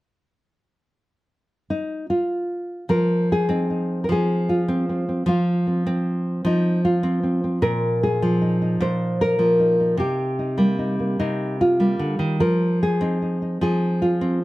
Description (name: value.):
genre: folk, solo fingerstyle acoustic guitar.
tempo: 50 BPM (dotted quarters).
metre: 6/8.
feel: rubato.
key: unclear.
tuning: A4 = 441 Hz.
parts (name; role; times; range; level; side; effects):
nylon-string guitar; solo; 1.7-14.4 s; Bb2 to C5; -19 LUFS; equal; none.
room: light reverb.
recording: none.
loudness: -19 LUFS.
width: side -18 dB against mid.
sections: 0.5-2.9 A section; 2.9-14.4 B section.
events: none.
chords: 0.5 N.C.; 2.9 Fm7; 7.6 Bb7sus4; 10.0 Cm7; 12.4 Fm7.